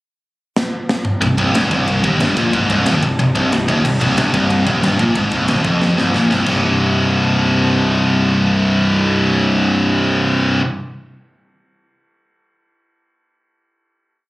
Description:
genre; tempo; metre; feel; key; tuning
heavy metal; 183 BPM; 4/4; straight; C minor; A4 = 436 Hz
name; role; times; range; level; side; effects
tight metal drum kit; drums; 0.6-6.5 s; crash cymbal, kick drum, ride cymbal, snare drum, splash cymbal, toms; -21 LUFS; equal; none
rich chamber string section; sustained chords; 1.2-9.9 s; C3 to Eb4; -27 LUFS; equal; none
fuzz guitar; riff; 1.2-10.6 s; C2 to C3; -22 LUFS; equal; distortion
high-gain distorted guitar; riff; 1.2-10.6 s; C2 to C3; -21 LUFS; right 3 dB; distortion
scooped high-gain guitar; riff; 1.2-10.6 s; C2 to C3; -17 LUFS; left 2 dB; distortion
fuzz fingered electric bass; bass; 1.2-10.6 s; C1 to Bb1; -21 LUFS; equal; overdrive
room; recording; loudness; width
light reverb, studio ambience; recorded on a phone in the room, club reverb, compression; -13 LUFS; side -19 dB against mid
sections
0.0-1.2 pickup bar; 1.2-6.5 riff; 6.5-9.1 final chord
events
drum fill 0.6-1.2, 5.8-6.5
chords
0.0 N.C.; 1.2 Cm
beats
0.23 0.56 0.89 | 1.22 1.55 1.88 2.21 | 2.54 2.86 3.19 3.52 | 3.85 4.17 4.50 4.83 | 5.16 5.49 5.81 6.14 | 6.47 6.80 7.13 7.45 | 7.78 8.11 8.44 8.77

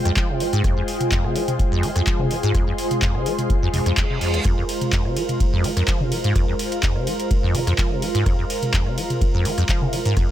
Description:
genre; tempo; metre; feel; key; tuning
acid house; 126 BPM; 4/4; straight; F minor; A4 = 440 Hz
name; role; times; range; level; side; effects
warm analog pad; sustained chords; 0.0-10.3 s; Ab3 to C5; -27 LUFS; left 1 dB; chorus, sidechain pumping
ethereal airy pad; texture; 0.0-10.3 s; F4 to C6; -28 LUFS; right 2 dB; ensemble chorus, built-in reverb, sidechain pumping
acid bass, saw; riff; 0.1-10.3 s; Eb2 to F3; -23 LUFS; equal; ensemble chorus, cassette tape, sidechain pumping
booming analog drum machine; drums; 0.1-10.3 s; handclaps, hi-hat, ride cymbal, rim click, toms; -26 LUFS; left 1 dB; studio reverb
electronic kick drum; drums; 0.2-10.3 s; none; -22 LUFS; equal; studio reverb
reverse cymbal; sound effects; 3.7-4.5 s; none; -29 LUFS; right 4 dB; none
room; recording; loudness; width
little or no reverb; none; -18 LUFS; side -12 dB against mid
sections
0.0-10.3 A section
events
reverse cymbal 3.7-4.5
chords
0.0 Fm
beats
0.17 | 0.64 1.12 1.59 2.07 | 2.55 3.02 3.50 3.98 | 4.45 4.93 5.40 5.88 | 6.36 6.83 7.31 7.79 | 8.26 8.74 9.21 9.69 | 10.17

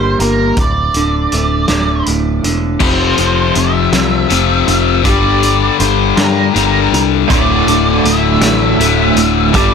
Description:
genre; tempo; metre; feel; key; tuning
quiet-loud alternative rock; 54 BPM (dotted quarters); 6/8; straight; D minor; A4 = 440 Hz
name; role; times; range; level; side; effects
octave-fuzz lead guitar; melody; 0.0-9.7 s; Bb4 to E5; -18 LUFS; right 3 dB; distortion, tape echo
electric guitar through a small old amp; arpeggios; 0.0-9.7 s; D2 to D4; -19 LUFS; right 2 dB; none
picked electric bass; bass; 0.0-9.7 s; D1 to G2; -16 LUFS; equal; none
loose indie drum kit; drums; 0.2-9.7 s; crash cymbal, hi-hat, kick drum, snare drum; -18 LUFS; equal; none
overdriven electric guitar; riff; 2.8-9.7 s; D2 to G3; -13 LUFS; left 18 dB; none
overdriven electric guitar; riff; 7.3-9.7 s; D2 to G3; -16 LUFS; right 15 dB; tremolo
room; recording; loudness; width
light reverb; none; -10 LUFS; side -6 dB against mid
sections
0.0-2.8 A section; 2.8-9.7 B section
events
none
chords
0.0 Gm; 0.6 D5; 2.8 F5; 5.1 Gm; 7.3 Dsus2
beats
| 0.57 1.69 | 2.81 3.94 | 5.06 6.18 | 7.30 8.42 | 9.54

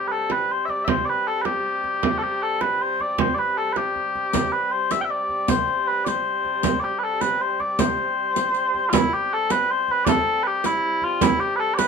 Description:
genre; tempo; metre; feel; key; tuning
medieval dance; 104 BPM (dotted quarters); 6/8; straight; C major; A4 = 440 Hz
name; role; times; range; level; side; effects
mellow small bagpipes; melody; 0.0-11.9 s; E4 to G5; -21 LUFS; left 1 dB; none
dark hurdy-gurdy; drone; 0.0-11.9 s; C3 to G3; -32 LUFS; right 1 dB; none
frame drum; percussion; 0.3-11.9 s; none; -24 LUFS; right 7 dB; none
riq; percussion; 4.3-11.9 s; none; -27 LUFS; left 6 dB; none
room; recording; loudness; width
moderate studio reverb, RT60 0.6 s; minimal, uncompressed stereo recording; -20 LUFS; side -5 dB against mid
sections
0.0-8.9 A section; 8.9-11.9 B section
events
none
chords
none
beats
0.30 | 0.88 1.46 | 2.03 2.61 | 3.19 3.76 | 4.34 4.91 | 5.49 6.06 | 6.64 7.21 | 7.78 8.36 | 8.93 9.50 | 10.07 10.65 | 11.22 11.79

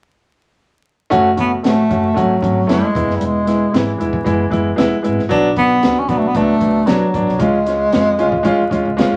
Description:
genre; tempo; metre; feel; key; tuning
uptempo 1960s-style soul; 115 BPM; 4/4; straight; F# minor; A4 = 440 Hz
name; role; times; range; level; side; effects
warm grand piano; accompaniment; 1.1-9.1 s; F#3 to F#4; -19 LUFS; equal; none
upright bass; bass; 1.1-9.2 s; E1 to E#2; -28 LUFS; equal; none
compact cocktail drum kit; drums; 1.1-9.1 s; hi-hat, kick drum, snare drum; -23 LUFS; equal; none
warm bass clarinet; melody; 1.4-9.2 s; E3 to C#4; -19 LUFS; equal; none
room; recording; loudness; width
moderate studio reverb, RT60 0.6 s; vinyl crackle; -15 LUFS; mono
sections
1.1-9.2 A section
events
none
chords
1.1 F#m; 3.0 E; 5.3 Bm; 7.4 C#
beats
| 1.12 1.65 2.17 2.69 | 3.21 3.74 4.26 4.79 | 5.31 5.83 6.36 6.88 | 7.40 7.93 8.45 8.98

